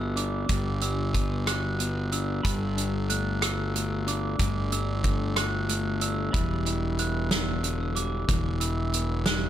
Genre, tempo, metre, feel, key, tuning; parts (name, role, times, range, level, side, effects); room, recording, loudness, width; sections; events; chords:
post-rock; 62 BPM (dotted quarters); 6/8; straight; A4 = 436 Hz
pedal steel guitar; sustained chords; 0.0-9.5 s; G3 to B5; -41 LUFS; right 4 dB
electric guitar through a small old amp; arpeggios; 0.0-9.5 s; D3 to F#4; -32 LUFS; left 3 dB; digital delay
glockenspiel with soft plastic mallets; arpeggios; 0.0-9.5 s; D6 to F#6; -35 LUFS; right 3 dB; digital delay
fuzz fingered electric bass; bass; 0.0-9.5 s; E1 to G1; -29 LUFS; equal; overdrive
loose indie drum kit; drums; 0.2-9.4 s; hi-hat, kick drum, rim click, snare drum; -28 LUFS; right 1 dB
light reverb, small room ambience; -25 LUFS; side -11 dB against mid
0.0-6.3 A section; 6.3-9.5 B section
0.0 Gmaj7; 2.4 D6/G; 6.3 Em7